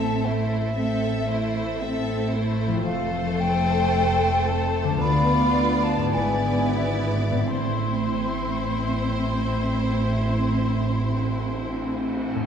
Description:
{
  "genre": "classical",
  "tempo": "43-59 BPM",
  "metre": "4/4",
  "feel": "rubato",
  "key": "A minor",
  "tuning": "A4 = 440 Hz",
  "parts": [
    { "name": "clear studio violin section", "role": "melody", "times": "0.0-12.3 s", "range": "C5 to E5", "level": "-33 LUFS", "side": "left 3 dB", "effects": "none" },
    { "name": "mellow hollow silver concert flute", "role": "second line", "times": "0.0-11.9 s", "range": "E5 to C6", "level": "-28 LUFS", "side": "left 1 dB", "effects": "none" },
    { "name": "rich studio violin section", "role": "second line", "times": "0.0-12.3 s", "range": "E4 to A4", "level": "-32 LUFS", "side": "left 3 dB", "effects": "none" },
    { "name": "rich studio viola section", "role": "accompaniment", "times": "0.0-12.3 s", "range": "A3 to C4", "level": "-28 LUFS", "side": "equal", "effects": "none" },
    { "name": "concert harp", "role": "arpeggios", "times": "0.0-12.5 s", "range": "G#2 to C5", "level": "-30 LUFS", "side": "left 6 dB", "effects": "none" },
    { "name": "warm studio cello section", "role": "bass", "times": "0.0-12.3 s", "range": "D2 to A2", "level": "-29 LUFS", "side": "right 3 dB", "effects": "none" },
    { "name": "warm studio double bass section", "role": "bass", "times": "0.0-12.3 s", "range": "F1 to D2", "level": "-28 LUFS", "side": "right 3 dB", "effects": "none" }
  ],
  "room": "wet scoring stage reverb, RT60 1.9 s",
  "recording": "dark, warm production",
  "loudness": "-21 LUFS",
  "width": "side -8 dB against mid",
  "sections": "0.0-12.5 A section",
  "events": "none",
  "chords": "0.0 Am; 2.9 F; 5.0 Bdim/D; 6.2 E7/G#; 7.5 Am"
}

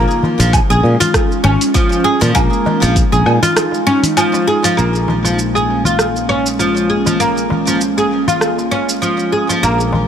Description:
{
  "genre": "organic downtempo",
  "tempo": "99 BPM",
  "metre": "4/4",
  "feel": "swing 56% on 16ths",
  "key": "Bb minor",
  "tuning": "A4 = 440 Hz",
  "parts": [
    { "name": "ethereal airy pad", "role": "sustained chords", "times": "0.1-10.1 s", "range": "Ab3 to Eb4", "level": "-19 LUFS", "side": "right 1 dB", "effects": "ensemble chorus, built-in reverb, sidechain pumping" },
    { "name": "oud", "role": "arpeggios", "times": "0.0-10.1 s", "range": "F3 to Ab4", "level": "-15 LUFS", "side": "equal", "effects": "low-pass filter, digital delay" },
    { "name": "sustaining fretless electric bass", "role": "bass", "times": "0.0-10.1 s", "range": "Ab1 to Bb2", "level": "-16 LUFS", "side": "equal", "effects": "sidechain pumping" },
    { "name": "deep house drum kit", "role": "drums", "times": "0.1-9.9 s", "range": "hi-hat, rim click, shaker, woodblock", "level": "-19 LUFS", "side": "right 1 dB", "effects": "overdrive" },
    { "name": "darbuka", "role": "percussion", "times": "0.2-10.1 s", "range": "none", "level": "-22 LUFS", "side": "left 2 dB", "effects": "none" },
    { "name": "electronic kick drum", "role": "drums", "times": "0.5-3.1 s", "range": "none", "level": "-16 LUFS", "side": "equal", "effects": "overdrive" }
  ],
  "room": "light reverb, digital ambience",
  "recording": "none",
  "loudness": "-12 LUFS",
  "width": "side -8 dB against mid",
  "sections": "0.0-4.8 A section; 4.8-10.1 B section",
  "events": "none",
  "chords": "0.0 Db69; 4.8 Bbm7"
}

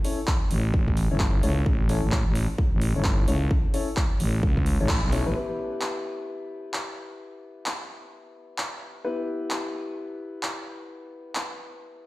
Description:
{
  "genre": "bass house",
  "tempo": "130 BPM",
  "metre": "4/4",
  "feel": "swing 61% on 16ths",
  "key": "E dorian",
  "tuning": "A4 = 439 Hz",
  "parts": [
    { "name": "warm grand piano", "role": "stabs", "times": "0.0-12.1 s", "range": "B3 to C#5", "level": "-33 LUFS", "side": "left 3 dB", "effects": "sidechain pumping, digital delay" },
    { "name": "big-room dance drum kit", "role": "drums", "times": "0.0-11.5 s", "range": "handclaps, hi-hat", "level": "-32 LUFS", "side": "equal", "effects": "none" },
    { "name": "electronic kick drum", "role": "drums", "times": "0.3-5.0 s", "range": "none", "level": "-24 LUFS", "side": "equal", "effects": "none" },
    { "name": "growling FM bass", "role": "bass", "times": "0.5-5.3 s", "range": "G1 to C#2", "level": "-24 LUFS", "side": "equal", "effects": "tube saturation, sidechain pumping" }
  ],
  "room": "light reverb, digital ambience",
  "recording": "played on a big sound system in a bare room, stone room reverb",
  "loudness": "-23 LUFS",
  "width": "side -19 dB against mid",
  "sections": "0.0-5.4 A section; 5.4-12.1 B section",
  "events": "band accent 4.9",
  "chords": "0.0 A; 5.4 Em"
}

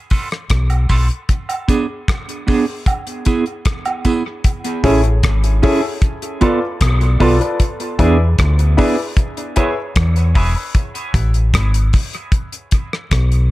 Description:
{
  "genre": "dub reggae",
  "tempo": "76 BPM",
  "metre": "4/4",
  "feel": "straight",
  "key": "A major",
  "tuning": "A4 = 441 Hz",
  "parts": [
    { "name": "mellow electric guitar", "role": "accompaniment", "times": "0.1-10.5 s", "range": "B3 to A4", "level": "-20 LUFS", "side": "right 4 dB", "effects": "tremolo, high-pass filter, low-pass filter, dub echo" },
    { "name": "damped 70s drum kit", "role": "drums", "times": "0.1-13.5 s", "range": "hi-hat, kick drum, rim click", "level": "-17 LUFS", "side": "equal", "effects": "none" },
    { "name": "tambourine and woodblock", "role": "percussion", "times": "0.1-4.2 s", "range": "none", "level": "-26 LUFS", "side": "right 3 dB", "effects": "high-pass filter on perc, dub echo" },
    { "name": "deep dub fingered electric bass", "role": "bass", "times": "0.5-13.5 s", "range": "E1 to E2", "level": "-14 LUFS", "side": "equal", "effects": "none" },
    { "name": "warm upright piano", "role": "stabs", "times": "4.8-11.3 s", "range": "E4 to D5", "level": "-21 LUFS", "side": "left 4 dB", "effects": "high-pass filter, low-pass filter, dub echo" }
  ],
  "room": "light reverb, studio reverb",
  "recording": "none",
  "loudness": "-14 LUFS",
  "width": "side -17 dB against mid",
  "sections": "0.0-4.4 A section; 4.4-13.5 B section",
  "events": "break 0.0-4.4; filter sweep 0.0-4.4, 7.6-13.5; part muted 4.4-13.5",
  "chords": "0.0 Asus2/B; 1.3 Bm6; 2.9 E/B; 4.4 Amaj7; 6.0 Dm6; 7.6 E7; 9.2 C#m7; 10.8 Amaj7; 12.3 N.C."
}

